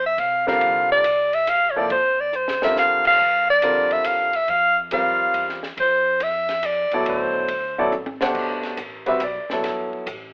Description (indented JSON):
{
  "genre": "modal jazz",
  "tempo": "140 BPM",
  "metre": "3/4",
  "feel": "swing 67% on 8ths",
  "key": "F major",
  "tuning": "A4 = 439 Hz",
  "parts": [
    { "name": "warm soprano saxophone", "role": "melody", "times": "0.0-7.9 s", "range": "C5 to F5", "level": "-21 LUFS", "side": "equal", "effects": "none" },
    { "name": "upright bass", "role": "bass", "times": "0.0-10.3 s", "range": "F#1 to C3", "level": "-46 LUFS", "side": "equal", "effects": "none" },
    { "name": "compact cocktail drum kit", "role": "drums", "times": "0.2-10.2 s", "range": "crash cymbal, hi-hat, kick drum, ride cymbal, snare drum, toms", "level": "-35 LUFS", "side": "equal", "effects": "none" },
    { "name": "clear baby grand piano", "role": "accompaniment", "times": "0.5-10.1 s", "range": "B2 to F#5", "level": "-26 LUFS", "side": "equal", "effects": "none" }
  ],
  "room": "moderate studio reverb, RT60 0.7 s",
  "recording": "telephone sound",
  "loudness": "-21 LUFS",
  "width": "mono",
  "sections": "0.0-8.4 A section; 8.4-10.3 B section",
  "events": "drum fill 2.3-2.8, 7.9-8.4; band accent 3.0",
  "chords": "0.0 Fsus2; 7.1 D13; 8.4 Gmaj9"
}